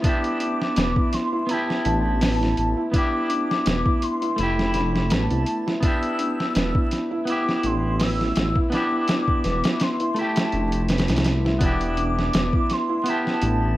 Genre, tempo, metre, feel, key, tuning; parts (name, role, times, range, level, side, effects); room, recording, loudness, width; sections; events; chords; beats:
trip hop; 83 BPM; 4/4; swing 55% on 16ths; E phrygian; A4 = 440 Hz
clean electric guitar; accompaniment; 0.0-13.8 s; A3 to G4; -27 LUFS; equal; harmonic tremolo
felt-muted upright piano; arpeggios; 0.0-13.8 s; B3 to E4; -26 LUFS; right 1 dB; ping-pong delay
dusty soul sampler-style drum kit; drums; 0.0-13.6 s; hi-hat, kick drum, snare drum; -24 LUFS; equal
pure breathy sine lead; melody; 0.1-13.8 s; A5 to E6; -28 LUFS; left 1 dB; phaser, ensemble chorus, cassette tape, tape echo
dark detuned saw bass; bass; 0.8-13.8 s; E1 to C2; -24 LUFS; equal
little or no reverb; vinyl crackle; -20 LUFS; side -16 dB against mid
0.0-13.8 A section
0.0 Em7; 1.5 A5; 2.9 Em7; 4.4 Fmaj7; 5.8 Em7; 7.3 A5; 8.7 Em7; 10.2 Fmaj7; 11.6 Em7; 13.1 A5
| 0.04 0.77 1.49 2.21 | 2.94 3.66 4.38 5.11 | 5.83 6.55 7.27 8.00 | 8.72 9.44 10.16 10.89 | 11.61 12.33 13.06